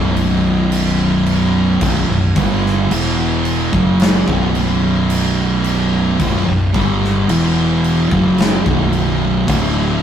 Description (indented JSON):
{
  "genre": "stoner and doom metal",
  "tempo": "55 BPM",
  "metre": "4/4",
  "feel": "straight",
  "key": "B minor",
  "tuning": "A4 = 439 Hz",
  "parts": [
    { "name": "thick fuzz guitar", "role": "riff", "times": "0.0-10.0 s", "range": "B1 to G3", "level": "-18 LUFS", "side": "left 2 dB", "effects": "distortion" },
    { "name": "thick fuzz guitar", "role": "riff", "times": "0.0-10.0 s", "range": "B1 to G3", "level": "-17 LUFS", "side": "right 3 dB", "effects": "distortion" },
    { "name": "fuzz fingered electric bass", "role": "bass", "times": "0.0-10.0 s", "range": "B0 to G1", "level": "-21 LUFS", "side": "left 1 dB", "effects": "overdrive, tube saturation" },
    { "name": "big rock drum kit", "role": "drums", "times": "0.2-9.7 s", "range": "crash cymbal, kick drum, snare drum", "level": "-20 LUFS", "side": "equal", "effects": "none" }
  ],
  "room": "light reverb",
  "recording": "rough rehearsal-room recording",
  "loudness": "-13 LUFS",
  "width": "side -9 dB against mid",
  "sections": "0.0-10.0 A section",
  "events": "none",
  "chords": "0.0 Bm"
}